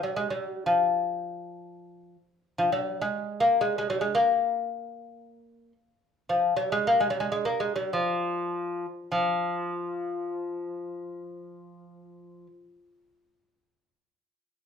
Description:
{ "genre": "Persian modal ensemble", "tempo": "free time", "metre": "none", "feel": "none", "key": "unclear", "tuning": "A4 = 440 Hz", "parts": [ { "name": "lute", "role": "solo", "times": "0.0-12.5 s", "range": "F3 to Bb3", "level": "-25 LUFS", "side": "left 1 dB", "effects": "none" } ], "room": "moderate large studio reverb, RT60 0.9 s", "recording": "band playing live in one room", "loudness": "-25 LUFS", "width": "side -7 dB against mid", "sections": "0.0-9.1 A section; 9.1-11.7 B section", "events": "none", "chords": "none" }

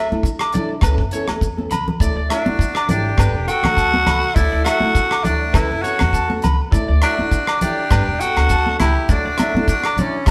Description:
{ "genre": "highlife guitar band", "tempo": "102 BPM", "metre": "4/4", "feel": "swing 54% on 16ths", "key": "D major", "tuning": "A4 = 439 Hz", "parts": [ { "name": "flamenco guitar", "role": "accompaniment", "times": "0.0-10.3 s", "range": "E3 to A4", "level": "-30 LUFS", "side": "equal", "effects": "none" }, { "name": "electric guitar at the edge of break-up", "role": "arpeggios", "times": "0.0-10.3 s", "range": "B4 to D6", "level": "-28 LUFS", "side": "equal", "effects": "none" }, { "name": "upright bass", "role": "bass", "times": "0.1-10.3 s", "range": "E1 to D3", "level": "-24 LUFS", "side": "equal", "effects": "none" }, { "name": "congas", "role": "percussion", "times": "0.1-10.1 s", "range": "none", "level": "-26 LUFS", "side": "equal", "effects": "none" }, { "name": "damped 70s drum kit", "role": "drums", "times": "0.2-10.3 s", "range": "hi-hat, kick drum, rim click", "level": "-21 LUFS", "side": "equal", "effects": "none" }, { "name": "maracas", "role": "percussion", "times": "0.3-10.3 s", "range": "none", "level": "-40 LUFS", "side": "equal", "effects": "none" }, { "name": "agogo bells", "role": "percussion", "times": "0.4-10.3 s", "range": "none", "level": "-30 LUFS", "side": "equal", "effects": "none" }, { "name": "raspy tenor saxophone", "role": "melody", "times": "2.3-10.3 s", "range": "C#4 to F#4", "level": "-22 LUFS", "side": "equal", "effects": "none" }, { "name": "clear trumpet", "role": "second line", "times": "2.3-10.3 s", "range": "E4 to A4", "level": "-31 LUFS", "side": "equal", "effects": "none" } ], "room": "moderate stone room reverb, RT60 1.3 s", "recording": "band playing live in one room", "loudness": "-18 LUFS", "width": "mono", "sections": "0.0-10.3 A section", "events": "drum fill 1.3-2.0", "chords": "0.0 Dadd9; 0.8 Aadd9; 2.0 Dadd9; 3.2 Gadd9; 4.4 Dadd9; 5.5 Aadd9; 6.7 Dadd9; 7.9 Gadd9; 9.1 Dadd9" }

